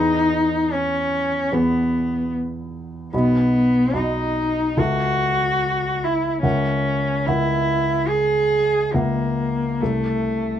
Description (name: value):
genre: classical, romantic duo for cello and grand piano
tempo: 73 BPM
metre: 4/4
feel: rubato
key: E major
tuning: A4 = 443 Hz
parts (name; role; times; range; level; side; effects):
- rich cello; melody; 0.0-10.6 s; A3 to G#4; -20 LUFS; equal; none
- warm grand piano; accompaniment; 0.0-10.6 s; B1 to B5; -24 LUFS; left 1 dB; none
room: moderate studio ambience, RT60 0.5 s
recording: nothing above 10.8 kHz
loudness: -18 LUFS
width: side -10 dB against mid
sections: 0.0-10.6 A section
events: none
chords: 0.0 E; 3.1 B; 4.8 A/C#; 6.4 F#7/C#; 9.8 Am/C